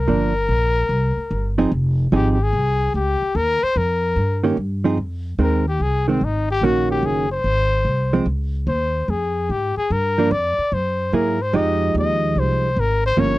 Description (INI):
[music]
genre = jazz, small-group swing and bop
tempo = 146 BPM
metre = 4/4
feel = swing 67% on 8ths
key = F minor from 5.0 s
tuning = A4 = 438 Hz
[part]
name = warm trumpet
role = melody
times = 0.0-13.4 s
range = C4 to Eb5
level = -21 LUFS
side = left 2 dB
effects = none
[part]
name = upright bass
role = bass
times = 0.0-13.4 s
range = F1 to Ab2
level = -21 LUFS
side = equal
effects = none
[part]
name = hollow-body jazz guitar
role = accompaniment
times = 0.1-13.4 s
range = Eb3 to Ab4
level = -19 LUFS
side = right 3 dB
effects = none
[sound]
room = little or no reverb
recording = dry, close 1970s-style studio recording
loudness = -17 LUFS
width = side -17 dB against mid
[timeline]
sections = 0.0-5.0 A section; 5.0-13.4 B section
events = trumpet solo 5.0-13.4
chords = 0.1 Gm7; 0.9 C5; 1.7 Fm7; 3.3 Eb; 5.0 Fm7; 6.6 Ebm7; 7.4 Ab; 8.3 Dbmaj7; 9.9 Gm7; 10.7 Gb9; 11.5 Fm9